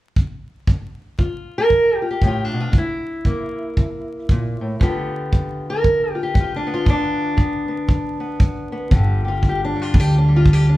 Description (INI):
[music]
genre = acoustic country blues, solo or duo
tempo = 116 BPM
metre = 4/4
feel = swing 61% on 8ths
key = G mixolydian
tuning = A4 = 440 Hz
[part]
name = kick drum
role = drums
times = 0.2-10.6 s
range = none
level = -18 LUFS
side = equal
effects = none
[part]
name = fingerpicked steel-string acoustic guitar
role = melody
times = 0.7-10.8 s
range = G2 to Bb4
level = -21 LUFS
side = equal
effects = none
[part]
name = upright bass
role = bass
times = 8.9-10.8 s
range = G1 to D2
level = -15 LUFS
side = equal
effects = none
[sound]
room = light reverb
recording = band playing live in one room, vinyl crackle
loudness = -17 LUFS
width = side -16 dB against mid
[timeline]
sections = 0.7-8.9 A section; 8.9-10.8 B section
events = none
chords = 0.0 N.C.; 0.7 G7(no3); 2.7 C7; 4.8 G7; 8.9 G5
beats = 0.17 | 0.69 1.20 1.72 2.23 | 2.75 3.26 3.78 4.29 | 4.81 5.32 5.84 6.35 | 6.87 7.38 7.90 8.41 | 8.93 9.44 9.95 10.47